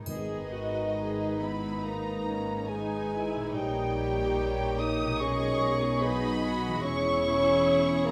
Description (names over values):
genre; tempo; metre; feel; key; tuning
classical, slow romantic movement for symphony orchestra; 66-75 BPM; 4/4; rubato; G# minor; A4 = 441 Hz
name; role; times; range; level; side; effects
warm chamber violin section; melody; 0.0-8.1 s; D#5 to D#6; -40 LUFS; equal; none
concert harp; arpeggios; 0.0-8.1 s; G#2 to D#5; -44 LUFS; equal; none
dark studio cello section; bass; 0.0-8.1 s; E2 to B2; -39 LUFS; equal; none
small flute group; second line; 0.1-8.1 s; D#5 to D#6; -38 LUFS; equal; none
warm symphonic violin section; second line; 0.1-8.1 s; D#4 to D#5; -39 LUFS; equal; none
dark bassoon; accompaniment; 0.1-8.1 s; D#3 to D#4; -33 LUFS; equal; none
dark symphonic viola section; accompaniment; 0.1-8.1 s; C#4 to G#4; -40 LUFS; equal; none
mellow French horn section; sustained chords; 0.1-8.1 s; C#4 to B4; -40 LUFS; equal; none
dark symphonic double bass section; bass; 0.1-8.1 s; E1 to B1; -40 LUFS; equal; none
timpani; percussion; 0.1-1.4 s; G#2; -46 LUFS; equal; none
triangle; percussion; 0.1-1.8 s; none; -52 LUFS; equal; none
room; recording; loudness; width
wet scoring stage reverb, RT60 2.0 s; none; -29 LUFS; mono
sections
0.0-8.1 A section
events
none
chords
0.1 G#m; 3.6 D#7/A#; 5.2 G#m/B; 6.9 C#m/E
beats
| 0.08 0.98 1.86 2.72 | 3.56 4.40 5.22 6.04 | 6.86 7.66